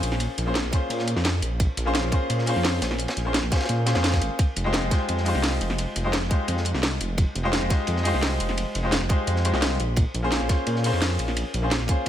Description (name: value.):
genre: liquid drum and bass.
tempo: 172 BPM.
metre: 4/4.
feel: straight.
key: unclear.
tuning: A4 = 440 Hz.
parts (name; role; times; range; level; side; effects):
bright grand piano; accompaniment; 0.0-12.1 s; Ab3 to C5; -27 LUFS; left 2 dB; ping-pong delay.
dark detuned saw bass; bass; 0.0-12.1 s; F1 to Bb2; -26 LUFS; equal; none.
crunchy breakbeat drum kit; drums; 0.0-12.1 s; hi-hat, ride cymbal, snare drum; -33 LUFS; equal; high-pass filter on cymbals, high-pass filter on hats, high-pass filter on snare, high-pass filter on room.
drum and bass drum kit; drums; 0.0-12.1 s; hi-hat, snare drum; -28 LUFS; equal; none.
electronic kick drum; drums; 0.7-12.0 s; none; -22 LUFS; equal; none.
room: light reverb, studio reverb.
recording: none.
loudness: -21 LUFS.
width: side -11 dB against mid.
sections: 0.0-12.1 A section.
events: none.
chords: 0.0 Bbm9; 4.4 Fm9; 9.8 Bbm9.